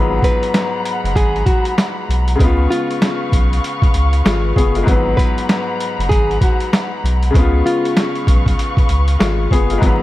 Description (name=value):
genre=hip hop, boom-bap hip-hop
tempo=97 BPM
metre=4/4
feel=swing 61% on 16ths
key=unclear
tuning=A4 = 441 Hz
part: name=bright upright piano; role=accompaniment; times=0.0-10.0 s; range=G#2 to B4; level=-20 LUFS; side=left 3 dB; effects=cassette tape, high-pass filter, low-pass filter
part: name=muted studio string section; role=sustained chords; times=0.0-10.0 s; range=B4 to C#6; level=-25 LUFS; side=left 1 dB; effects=high-pass filter, low-pass filter
part: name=saturated sub bass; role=bass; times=0.0-10.0 s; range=F#1 to C#2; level=-17 LUFS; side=equal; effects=none
part: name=nylon-string guitar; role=melody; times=0.2-8.7 s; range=E#4 to B4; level=-22 LUFS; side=equal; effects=high-pass filter, low-pass filter, ping-pong delay
part: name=boom bap sampler-style drum kit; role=drums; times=0.2-10.0 s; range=hi-hat, kick drum, snare drum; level=-16 LUFS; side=equal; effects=none
room=small room ambience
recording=vinyl crackle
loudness=-13 LUFS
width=side -16 dB against mid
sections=0.0-10.0 A section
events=none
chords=0.0 G#m9; 2.4 C#7; 4.9 G#m9; 7.3 C#7